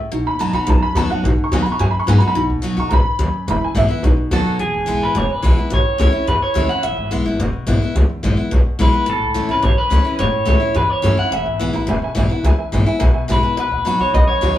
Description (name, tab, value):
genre	rockabilly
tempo	214 BPM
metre	4/4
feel	straight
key	E major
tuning	A4 = 437 Hz
part	picked steel-string acoustic guitar	accompaniment	0.0-14.6 s	E2 to F#4	-22 LUFS	left 2 dB	none
part	honky-tonk upright piano	accompaniment	0.1-4.6, 11.3-14.6 s	F#3 to C#6	-22 LUFS	right 1 dB	none
part	upright bass	bass	0.1-14.5 s	E1 to G#2	-17 LUFS	equal	none
part	electric guitar through a small old amp	melody	4.3-14.6 s	G#4 to F#5	-19 LUFS	equal	spring reverb
room	wet studio reverb, RT60 0.5 s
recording	band playing live in one room, small room ambience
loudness	-15 LUFS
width	side -12 dB against mid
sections	0.0-4.6 A section; 4.6-14.6 B section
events	honky-tonk piano solo 0.0-4.6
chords	0.1 B; 3.5 E; 4.0 B; 4.6 E; 5.7 A; 6.8 E; 9.1 A; 11.3 E; 13.6 B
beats	| 0.12 0.40 0.68 0.96 | 1.24 1.52 1.80 2.08 | 2.36 2.64 2.92 3.20 | 3.48 3.76 4.04 4.32 | 4.60 4.88 5.16 5.44 | 5.72 6.00 6.28 6.56 | 6.84 7.12 7.40 7.68 | 7.96 8.24 8.52 8.80 | 9.08 9.36 9.64 9.92 | 10.20 10.48 10.76 11.04 | 11.32 11.60 11.88 12.16 | 12.45 12.73 13.01 13.29 | 13.57 13.85 14.14 14.42